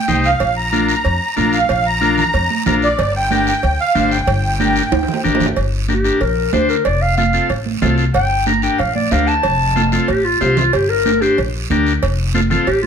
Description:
latin, cumbia; 186 BPM; 4/4; straight; G minor; A4 = 439 Hz
musette accordion; second line; 0.0-5.2 s; D5 to Bb5; -18 LUFS; right 2 dB
combo organ; accompaniment; 0.1-12.7 s; C4 to C5; -20 LUFS; left 5 dB; spring reverb
upright bass; bass; 0.1-12.9 s; F1 to F2; -20 LUFS; left 1 dB
congas; percussion; 0.1-12.9 s; -22 LUFS; right 7 dB
guiro; percussion; 0.1-12.9 s; -30 LUFS; right 7 dB
cowbell and timbales; percussion; 0.4-12.8 s; -22 LUFS; right 8 dB
mellow clarinet; melody; 5.9-12.9 s; F4 to Bb5; -16 LUFS; left 1 dB
moderate studio reverb, RT60 0.6 s; -13 LUFS; side -7 dB against mid
0.0-5.6 A section; 5.6-12.9 B section
accordion solo 0.0-5.6; drum fill 4.9-5.6, 9.9-10.7; clarinet solo 5.6-12.9
0.4 Bb; 3.0 Gm; 6.9 F; 8.2 Gm; 9.4 F; 10.7 Gm; 12.0 F

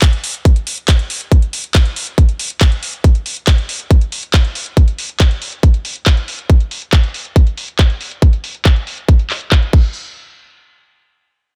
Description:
trance; 139 BPM; 4/4; straight
drum and bass drum kit; drums; 0.0-9.8 s; crash cymbal, handclaps, hi-hat; -23 LUFS; equal; low-pass filter on hats, low-pass filter on cymbals, low-pass filter on snare, low-pass filter on room
electronic kick drum; drums; 0.0-9.8 s; -12 LUFS; equal
little or no reverb; -15 LUFS; mono
0.0-9.9 A section; 9.9-11.6 B section

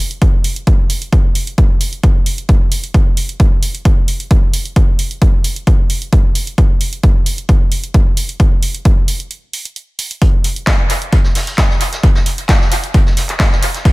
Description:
techno; 132 BPM; 4/4; straight
punchy analog drum machine; drums; 0.1-13.9 s; handclaps, hi-hat; -20 LUFS; right 1 dB; sidechain pumping on hats, tape echo
electronic kick drum; drums; 0.2-13.9 s; -11 LUFS; equal
vintage brush drum kit; drums; 10.2-13.9 s; hi-hat, snare drum; -26 LUFS; equal; sidechain pumping on hats, high-pass filter on hats, high-pass filter on snare, high-pass filter on room, tape echo
small room ambience; echo-heavy mix; -11 LUFS; side -22 dB against mid
0.0-13.9 A section
break 9.3-10.2

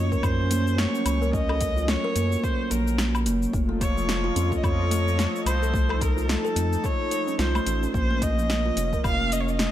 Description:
organic downtempo; 109 BPM; 4/4; swing 58% on 16ths; A4 = 441 Hz
clear kamancheh; melody; 0.0-9.7 s; A4 to F5; -29 LUFS; equal; tape echo
warm analog pad; sustained chords; 0.0-9.7 s; F3 to Eb5; -32 LUFS; right 2 dB; lush chorus, sidechain pumping
kalimba; arpeggios; 0.0-9.7 s; F3 to Bb4; -28 LUFS; equal; tape echo
round analog bass; bass; 0.0-9.7 s; F1 to Gb2; -26 LUFS; equal; sidechain pumping
deep house drum kit; drums; 0.1-9.7 s; cabasa, hi-hat, snare drum, woodblock; -30 LUFS; left 1 dB; overdrive
electronic kick drum; drums; 0.1-9.2 s; -27 LUFS; equal; overdrive
light reverb, digital ambience; -22 LUFS; side -12 dB against mid
0.0-9.7 A section
0.0 Gb; 3.5 F7b13; 7.9 Bbm

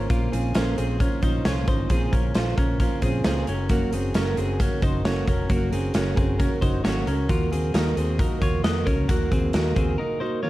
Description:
jangly indie pop; 134 BPM; 4/4; straight; Bb minor; A4 = 440 Hz
fingerpicked plugged-in steel-string acoustic guitar; accompaniment; 0.0-10.5 s; Bb2 to C5; -28 LUFS; right 3 dB; plate reverb
twelve-string electric guitar; arpeggios; 0.0-10.5 s; Bb3 to Eb5; -30 LUFS; left 3 dB; analog delay, plate reverb
vintage muted fingered electric bass; bass; 0.0-9.9 s; F1 to F2; -26 LUFS; equal
big rock drum kit; drums; 0.1-9.9 s; hi-hat, kick drum, snare drum; -24 LUFS; equal
light reverb; dark, warm production, vinyl crackle; -21 LUFS; side -16 dB against mid
0.0-10.5 A section
break 10.0-10.5
0.0 Bbmadd9; 3.5 Gb; 7.3 Ebmadd9

